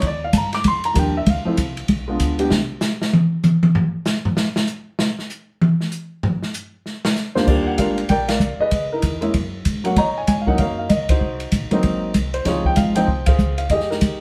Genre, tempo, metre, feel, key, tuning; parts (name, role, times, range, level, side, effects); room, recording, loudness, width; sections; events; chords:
jazz piano trio; 193 BPM; 4/4; swing 63% on 8ths; A4 = 440 Hz
warm baby grand piano; melody; 0.0-2.5, 7.4-14.2 s; Eb2 to D6; -23 LUFS; equal; plate reverb
upright bass; bass; 0.0-2.7, 7.5-14.2 s; Ab1 to C3; -23 LUFS; equal
open jazz drum kit; drums; 0.0-14.1 s; crash cymbal, hi-hat, kick drum, ride cymbal, snare drum, toms; -23 LUFS; equal
wet studio reverb, RT60 0.6 s; heard from further back in the room; -20 LUFS; mono
0.0-7.5 A section; 7.5-14.2 B section
grand piano solo 0.0-7.5; drum solo 2.5-7.5; band accent 8.2, 11.1, 13.2
0.0 Ebmaj9; 1.3 Dm7; 1.9 G7b9; 2.5 N.C.; 7.5 Ebmaj7; 8.7 Dbm9; 9.3 Gbsus2; 10.0 Bmaj9; 11.2 Ab7; 12.5 Dbmaj7; 13.7 Fm9